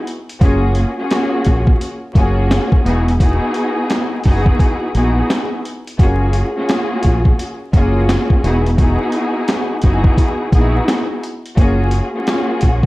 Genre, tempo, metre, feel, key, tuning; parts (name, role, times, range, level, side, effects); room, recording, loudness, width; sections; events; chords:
hip hop, boom-bap hip-hop; 86 BPM; 4/4; swing 62% on 16ths; F# major; A4 = 441 Hz
warm studio string section; accompaniment; 0.0-12.9 s; A#3 to G#4; -18 LUFS; left 1 dB; cassette tape, high-pass filter, low-pass filter
boom bap sampler-style drum kit; drums; 0.1-12.9 s; hi-hat, kick drum, snare drum; -15 LUFS; equal
deep dub fingered electric bass; bass; 0.4-12.9 s; E1 to A#1; -16 LUFS; equal
light reverb; dark, warm production, vinyl crackle; -13 LUFS; side -19 dB against mid
0.0-12.9 A section
0.4 F#maj9; 2.9 Emaj9; 6.0 F#maj9; 8.4 Emaj9; 11.6 F#maj9